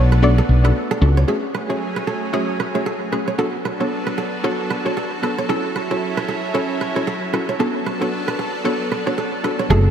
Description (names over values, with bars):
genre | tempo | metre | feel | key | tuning
afrobeats | 114 BPM | 4/4 | swing 58% on 16ths | unclear | A4 = 436 Hz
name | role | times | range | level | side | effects
soft round pluck | melody | 0.0-0.6, 9.7-9.8 s | A4 to D5 | -26 LUFS | right 1 dB | chorus, diffuse ambient delay
lush unison pad | sustained chords | 0.0-9.9 s | C#3 to A4 | -25 LUFS | right 1 dB | chorus
kora | riff | 0.0-9.8 s | G#4 to C#5 | -25 LUFS | right 5 dB | diffuse ambient delay
woody fretless electric bass | bass | 0.0-1.2, 9.7-9.9 s | F#1 to C#2 | -13 LUFS | equal | none
hollow square pluck | accompaniment | 0.2-9.9 s | A3 to A4 | -24 LUFS | left 1 dB | chorus
room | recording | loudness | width
moderate lush hall reverb, RT60 2.1 s | dreamy mix soaked in reverb | -18 LUFS | side -8 dB against mid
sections
0.0-1.3 A section; 1.3-9.7 B section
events
none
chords
0.0 Bm7; 1.3 F#madd9; 3.4 Bm7; 5.5 A6; 7.6 Bm7